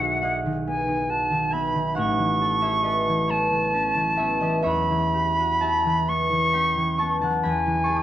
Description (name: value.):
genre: classical, impressionist duo for flute and harp.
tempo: 45 BPM (dotted quarters).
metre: 6/8.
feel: rubato.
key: unclear.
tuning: A4 = 435 Hz.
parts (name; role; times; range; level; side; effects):
silver concert flute; melody; 0.0-8.0 s; F#5 to C#6; -23 LUFS; right 1 dB; none.
concert harp; accompaniment; 0.0-8.0 s; A1 to D#6; -24 LUFS; left 1 dB; none.
room: light reverb.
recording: dark, warm production.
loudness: -20 LUFS.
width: side -12 dB against mid.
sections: 0.0-8.0 A section.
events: none.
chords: 0.0 Eadd9/B; 2.0 A69; 4.7 Em6; 7.4 C#m7/E.